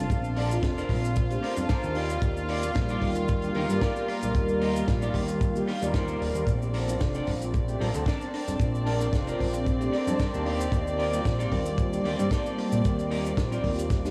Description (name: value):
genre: nu-disco, nu disco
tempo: 113 BPM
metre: 4/4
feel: swing 53% on 16ths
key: unclear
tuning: A4 = 440 Hz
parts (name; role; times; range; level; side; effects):
- mellow synth brass; accompaniment; 0.0-14.1 s; G3 to A5; -34 LUFS; equal; chorus, sidechain pumping, tape echo
- rich chamber string section; sustained chords; 0.0-14.1 s; C4 to F5; -36 LUFS; equal; sidechain pumping
- fat analog bass; bass; 0.0-14.1 s; Eb1 to G2; -32 LUFS; equal; none
- impact and reverse cymbal; sound effects; 0.0-0.1, 13.9-14.1 s; none; barely audible; none; none
- kick drum; drums; 0.1-14.0 s; none; -30 LUFS; equal; none
- tight funk drum kit; drums; 0.1-14.1 s; hi-hat, rim click, shaker, snare drum; -42 LUFS; equal; none
- congas; percussion; 0.1-14.1 s; none; -42 LUFS; equal; none
- clean electric guitar; riff; 0.4-13.9 s; D4 to G5; -38 LUFS; equal; lush chorus, tape echo
room: moderate lush hall reverb, RT60 1.9 s, small room ambience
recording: dreamy mix soaked in reverb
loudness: -27 LUFS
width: mono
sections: 0.0-14.1 A section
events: clean electric guitar fill 1.4-2.2, 9.9-10.7, 13.9; drum fill 13.9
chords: 0.0 Bbmaj9; 2.0 Ebmaj9; 6.5 Bbmaj9; 10.5 Ebmaj9